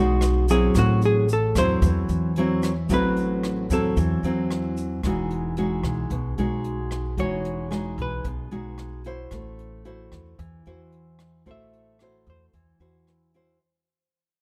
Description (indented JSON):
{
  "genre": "bossa nova",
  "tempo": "112 BPM",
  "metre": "4/4",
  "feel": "straight",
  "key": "unclear",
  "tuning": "A4 = 440 Hz",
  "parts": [
    { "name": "nylon-string guitar", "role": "accompaniment", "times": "0.0-13.6 s", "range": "A2 to C5", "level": "-27 LUFS", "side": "equal", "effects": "none" },
    { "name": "upright bass", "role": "bass", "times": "0.0-13.6 s", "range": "E1 to E2", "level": "-30 LUFS", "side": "equal", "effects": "none" },
    { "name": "jazz brush drum kit", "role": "drums", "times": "0.2-13.5 s", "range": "hi-hat, kick drum, rim click", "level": "-33 LUFS", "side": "equal", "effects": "none" },
    { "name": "tube shaker", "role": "percussion", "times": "0.2-5.0 s", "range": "none", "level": "-44 LUFS", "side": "equal", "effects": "none" },
    { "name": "hollow-body jazz guitar", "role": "melody", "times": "0.5-4.0, 7.2-8.3, 11.5-12.5 s", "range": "F#4 to E5", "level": "-28 LUFS", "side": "equal", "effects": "none" }
  ],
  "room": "light reverb",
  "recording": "dark, warm production",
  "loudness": "-24 LUFS",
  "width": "mono",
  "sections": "0.0-13.6 A section",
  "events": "fade-out 0.0-13.6; hollow-body jazz guitar solo 0.0-13.6",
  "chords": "0.0 Emaj9; 0.8 Am6; 5.0 Emaj9; 9.3 Am6"
}